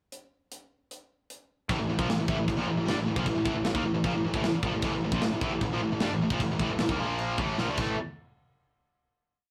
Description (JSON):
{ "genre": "heavy metal", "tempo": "153 BPM", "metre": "4/4", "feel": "straight", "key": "unclear", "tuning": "A4 = 438 Hz", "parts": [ { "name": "tight metal drum kit", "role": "drums", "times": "0.1-7.9 s", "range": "china cymbal, crash cymbal, hi-hat, kick drum, snare drum", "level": "-34 LUFS", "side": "equal", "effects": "none" }, { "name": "distorted electric guitar", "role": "riff", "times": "1.7-8.0 s", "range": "A2 to D4", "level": "-37 LUFS", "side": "equal", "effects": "none" }, { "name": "heavy high-gain guitar", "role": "riff", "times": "1.7-8.0 s", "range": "A2 to D4", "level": "-35 LUFS", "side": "equal", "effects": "distortion" }, { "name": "tight distorted guitar", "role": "riff", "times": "1.7-8.0 s", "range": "A2 to D4", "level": "-34 LUFS", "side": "equal", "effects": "distortion" }, { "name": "fuzz picked electric bass", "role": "bass", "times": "1.7-8.0 s", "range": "A1 to G2", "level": "-38 LUFS", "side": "equal", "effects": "overdrive" } ], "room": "moderate studio reverb, RT60 0.5 s", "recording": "rough rehearsal-room recording", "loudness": "-29 LUFS", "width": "mono", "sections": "0.1-1.7 pickup bar; 1.7-8.0 riff; 8.0-9.5 final hit", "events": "drum fill 7.6-8.0", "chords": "0.1 N.C.; 1.7 A5; 7.0 Bb5; 7.4 A5; 8.0 N.C." }